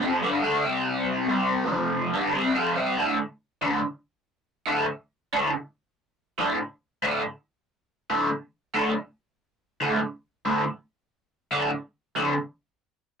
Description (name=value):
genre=rock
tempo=141 BPM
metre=4/4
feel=straight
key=D minor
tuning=A4 = 436 Hz
part: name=raw garage guitar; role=solo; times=0.0-12.3 s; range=D2 to D4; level=-23 LUFS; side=equal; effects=overdrive, phaser
room=wet booth ambience, RT60 0.2 s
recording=rough rehearsal-room recording, warm saturation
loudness=-24 LUFS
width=side -6 dB against mid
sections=0.0-3.0 A section; 3.0-13.2 B section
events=none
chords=0.0 Dm; 0.6 C5; 1.7 F5; 2.1 Dm; 3.0 D5